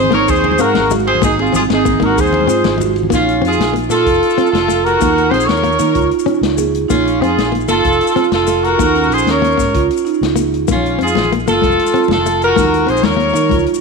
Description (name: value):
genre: highlife guitar band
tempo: 127 BPM (dotted quarters)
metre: 12/8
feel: straight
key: Bb minor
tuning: A4 = 440 Hz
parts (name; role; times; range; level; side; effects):
- warm horn section; melody; 0.0-13.7 s; Db4 to Db5; -15 LUFS; left 2 dB; tape echo
- marimba with soft mallets; arpeggios; 0.0-13.8 s; C4 to F5; -16 LUFS; right 9 dB; tape echo
- fingered electric bass; bass; 0.0-13.7 s; F1 to Eb3; -22 LUFS; left 1 dB; none
- congas; percussion; 0.0-3.1, 10.7-13.8 s; none; -23 LUFS; left 11 dB; none
- nylon-string guitar; accompaniment; 0.1-13.6 s; Ab3 to Db4; -21 LUFS; left 12 dB; none
- vintage drum kit; drums; 0.1-13.7 s; hi-hat, kick drum, ride cymbal, snare drum; -22 LUFS; left 4 dB; none
- maracas; percussion; 0.3-13.8 s; none; -31 LUFS; left 16 dB; none
room: moderate echo chamber reverb, RT60 1.6 s, studio reverb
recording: 1960s-style stereo with parts hard left and right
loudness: -11 LUFS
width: side -4 dB against mid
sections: 0.0-3.1 A section; 3.1-13.8 B section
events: none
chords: 0.0 Ab; 3.1 Bbm; 4.1 F; 5.0 Ebm7; 5.9 Dbsus2; 6.9 Bbm; 7.8 F; 8.8 Ebm7; 9.7 Dbsus2; 10.7 Bbm; 11.6 F; 12.6 Ebm7